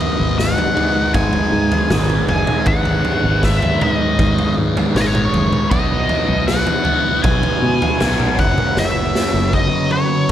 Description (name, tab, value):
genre	psychedelic rock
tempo	79 BPM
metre	4/4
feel	straight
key	unclear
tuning	A4 = 440 Hz
part	octave-fuzz lead guitar	melody	0.0-10.3 s	C#5 to G#5	-20 LUFS	left 1 dB	wah, distortion, slapback echo
part	tonewheel organ	sustained chords	0.0-10.3 s	D#3 to F#5	-27 LUFS	right 4 dB	stopped rotary speaker
part	thick fuzz guitar	riff	0.0-10.3 s	F#2 to B3	-20 LUFS	equal	distortion, phaser
part	raw garage drum kit	drums	0.0-10.3 s	kick drum, snare drum, toms	-19 LUFS	equal	none
part	fingered electric bass	bass	0.2-10.3 s	F#1 to B2	-21 LUFS	equal	none
room	small room ambience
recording	none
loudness	-14 LUFS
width	side -11 dB against mid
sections	0.0-10.3 A section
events	drum fill 8.8-10.3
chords	0.0 G#m; 5.7 Bsus4; 8.4 F#sus4